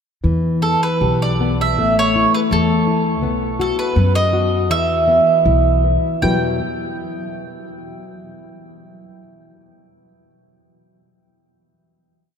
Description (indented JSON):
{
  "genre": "fado-style ballad",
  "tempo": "77-84 BPM",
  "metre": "2/4",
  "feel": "rubato",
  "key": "E dorian",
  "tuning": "A4 = 440 Hz",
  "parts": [
    { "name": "nylon-string guitar", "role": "accompaniment", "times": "0.2-6.6 s", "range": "E2 to B4", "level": "-21 LUFS", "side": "left 3 dB", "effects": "none" },
    { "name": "upright bass", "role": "bass", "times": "0.2-6.6 s", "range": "A1 to F#2", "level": "-20 LUFS", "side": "equal", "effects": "none" },
    { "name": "mandolin", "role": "melody", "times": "0.6-6.6 s", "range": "A4 to G5", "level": "-18 LUFS", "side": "right 2 dB", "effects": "none" }
  ],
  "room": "wet cathedral reverb, RT60 5.7 s",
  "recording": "in a vast, echoing space",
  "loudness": "-14 LUFS",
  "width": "side -7 dB against mid",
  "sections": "0.2-6.2 A section; 6.2-7.8 final chord",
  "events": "none",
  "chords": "0.2 Em; 1.8 A5; 3.2 B5; 4.7 E5; 6.2 Emadd9"
}